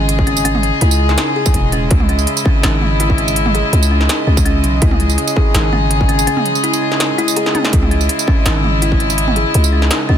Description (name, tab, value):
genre	half-time drum and bass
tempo	165 BPM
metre	4/4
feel	swing 53% on 16ths, half-time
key	C# minor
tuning	A4 = 440 Hz
part	warm chamber string section	sustained chords	0.0-10.2 s	C#3 to D#5	-18 LUFS	left 1 dB	sidechain pumping
part	buzzing kalimba	arpeggios	0.0-10.2 s	C#4 to G#4	-21 LUFS	left 1 dB	digital delay
part	growling 808-style bass	bass	0.0-10.2 s	E1 to C#2	-15 LUFS	equal	tube saturation
part	industrial drum kit	drums	0.1-10.0 s	hi-hat, snare drum, tambourine, toms	-19 LUFS	right 2 dB	overdrive, small room ambience
part	electronic kick drum	drums	0.2-9.0 s	none	-16 LUFS	equal	distortion, overdrive, small room ambience
room	little or no reverb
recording	dense, heavily limited modern master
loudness	-12 LUFS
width	side -9 dB against mid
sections	0.0-10.2 A section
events	drum fill 7.5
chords	0.0 C#madd9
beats	0.09 | 0.46 0.82 1.18 1.55 | 1.91 2.27 2.64 3.00 | 3.36 3.73 4.09 4.46 | 4.82 5.18 5.55 5.91 | 6.27 6.64 7.00 7.36 | 7.73 8.09 8.46 8.82 | 9.18 9.55 9.91